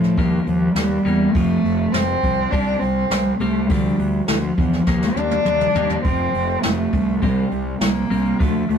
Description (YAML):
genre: quiet-loud alternative rock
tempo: 102 BPM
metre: 4/4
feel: straight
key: F major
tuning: A4 = 441 Hz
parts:
  - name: dark cello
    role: melody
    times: 0.0-8.8 s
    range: F3 to D4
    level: -20 LUFS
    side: equal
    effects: none
  - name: twelve-string electric guitar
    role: arpeggios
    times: 0.0-8.8 s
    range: F2 to C4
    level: -26 LUFS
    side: left 1 dB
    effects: none
  - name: fuzz fingered electric bass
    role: bass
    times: 0.0-8.8 s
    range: F1 to A2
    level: -23 LUFS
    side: equal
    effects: overdrive
  - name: jazz brush drum kit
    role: drums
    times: 0.0-8.8 s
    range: hi-hat, kick drum, snare drum, toms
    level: -23 LUFS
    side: equal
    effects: none
room: light reverb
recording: rough rehearsal-room recording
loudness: -17 LUFS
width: side -7 dB against mid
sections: 0.0-8.8 A section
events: drum fill 4.9-6.1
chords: 0.2 Eb; 1.3 F; 2.5 C5; 3.7 Dm; 4.9 Eb; 6.1 F; 7.2 C5